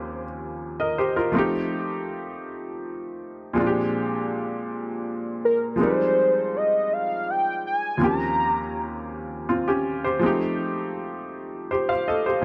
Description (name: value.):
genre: R&B.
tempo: 54 BPM (dotted quarters).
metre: 6/8.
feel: straight.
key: F minor.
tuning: A4 = 439 Hz.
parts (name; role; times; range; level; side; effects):
bright baby grand piano; accompaniment; 0.0-12.4 s; Eb2 to F5; -27 LUFS; equal; none.
warm velvety synth lead; melody; 5.5-8.9 s; Bb4 to Bb5; -25 LUFS; equal; chorus, delay.
room: light reverb.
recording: none.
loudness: -25 LUFS.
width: mono.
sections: 0.0-12.4 A section.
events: none.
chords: 0.0 Eb13; 1.3 F9; 3.6 Bb13; 5.8 Fm9; 8.0 Eb13; 10.2 F9.